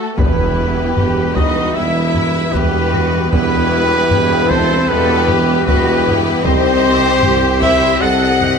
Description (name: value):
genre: cinematic, epic orchestral film score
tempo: 76 BPM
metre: 4/4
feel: straight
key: E harmonic minor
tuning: A4 = 440 Hz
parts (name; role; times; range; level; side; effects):
- rich symphonic violin section; melody; 0.0-8.6 s; A4 to F#5; -22 LUFS; left 5 dB; none
- dark symphonic violin section; second line; 0.0-8.6 s; F#4 to Eb5; -22 LUFS; left 4 dB; none
- rich symphonic viola section; accompaniment; 0.0-8.6 s; A3 to F#5; -23 LUFS; equal; none
- dark French horn section; sustained chords; 0.0-8.6 s; A3 to G4; -24 LUFS; left 3 dB; none
- clear trumpet; stabs; 0.0-8.6 s; A4 to F#5; -19 LUFS; right 2 dB; none
- dark trombone section; sustained chords; 0.2-8.3 s; G3 to C4; -27 LUFS; right 5 dB; none
- pipe organ, sparkling flutes; sustained chords; 0.2-8.6 s; E3 to B5; -24 LUFS; left 3 dB; none
- rich symphonic cello section; bass; 0.2-8.6 s; Eb4 to A4; -23 LUFS; equal; none
- rich symphonic double bass section; bass; 0.2-8.6 s; C2 to E2; -21 LUFS; right 3 dB; none
- warm tuba; bass; 0.2-8.6 s; E1 to C2; -21 LUFS; right 5 dB; none
- taiko ensemble; drums; 0.2-8.6 s; none; -20 LUFS; left 1 dB; none
- impact; sound effects; 0.2-3.3 s; none; -27 LUFS; equal; none
room: moderate concert hall reverb, RT60 2.1 s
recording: none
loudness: -12 LUFS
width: side -6 dB against mid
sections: 0.2-8.6 A section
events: break 0.0; impact 0.2-3.3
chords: 0.2 Em; 6.5 Cm